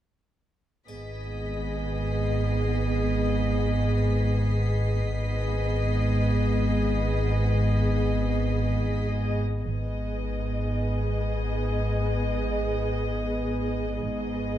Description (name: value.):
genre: cinematic, suspense film score.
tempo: 55 BPM.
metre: 4/4.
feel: straight.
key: G# minor.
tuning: A4 = 440 Hz.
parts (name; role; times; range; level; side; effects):
warm chamber violin section; melody; 0.9-14.6 s; D#5; -34 LUFS; left 2 dB; none.
dark studio viola section; accompaniment; 0.9-14.6 s; B3 to G#4; -30 LUFS; right 1 dB; none.
dark symphonic double bass section; bass; 0.9-14.6 s; G#1; -31 LUFS; right 2 dB; none.
warm symphonic cello section; bass; 0.9-14.6 s; G#2; -30 LUFS; equal; none.
deep rumbling drone; drone; 1.1-14.6 s; G#1; -30 LUFS; left 1 dB; built-in reverb.
triangle; percussion; 0.9-3.0 s; none; -56 LUFS; left 5 dB; none.
warm symphonic violin section; texture; 0.9-9.0 s; B6 to B#6; -43 LUFS; left 1 dB; none.
room: moderate scoring stage reverb, RT60 1.9 s.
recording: dark, warm production.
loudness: -24 LUFS.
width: side -12 dB against mid.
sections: 0.9-9.6 A section; 9.6-14.6 B section.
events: none.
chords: 0.9 G#m.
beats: | 0.89 1.98 3.07 4.14 | 5.21 6.29 7.38 8.49 | 9.61 10.71 11.81 12.91 | 14.00.